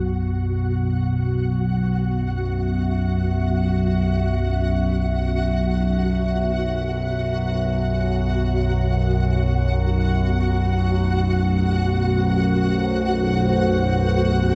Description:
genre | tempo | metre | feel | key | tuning
dark ambient drone | free time | none | none | unclear | A4 = 440 Hz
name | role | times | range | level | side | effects
dark analog pad | sustained chords | 0.0-14.6 s | B2 to E5 | -29 LUFS | equal | chorus, phaser
analog drone | drone | 0.0-14.6 s | B1 to F#2 | -22 LUFS | equal | lush chorus
flickering grainy texture | texture | 0.0-14.6 s | F#4 to F#5 | -31 LUFS | equal | built-in reverb
room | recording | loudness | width
moderate huge ambient reverb, RT60 7.2 s | none | -21 LUFS | mono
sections
0.0-14.6 A section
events
fade-in on analog synth pad 0.0-14.6; fade-in on synth texture 0.0-14.6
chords
0.0 Bm; 8.9 Am/B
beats
free time

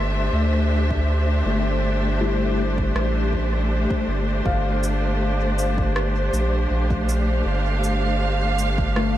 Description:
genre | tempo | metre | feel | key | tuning
ambient dub | 80 BPM | 4/4 | straight | unclear | A4 = 442 Hz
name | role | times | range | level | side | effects
warm symphonic string section | sustained chords | 0.0-9.2 s | A3 to F5 | -24 LUFS | equal | none
felt-muted upright piano | arpeggios | 0.0-9.2 s | G3 to C6 | -31 LUFS | left 6 dB | ping-pong delay
round analog bass | bass | 0.0-9.2 s | G1 to D2 | -22 LUFS | equal | none
electronic kick drum | drums | 0.9-8.9 s | none | -26 LUFS | equal | overdrive
electronic rim click and cabasa | drums | 3.0-9.1 s | none | -32 LUFS | right 2 dB | dub echo
room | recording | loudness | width
light reverb | none | -19 LUFS | side -13 dB against mid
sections
0.0-9.2 A section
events
none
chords
0.0 Dsus2/G; 4.5 Gm7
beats
0.71 | 1.46 2.21 2.96 3.71 | 4.46 5.21 5.96 6.71 | 7.46 8.21 8.96

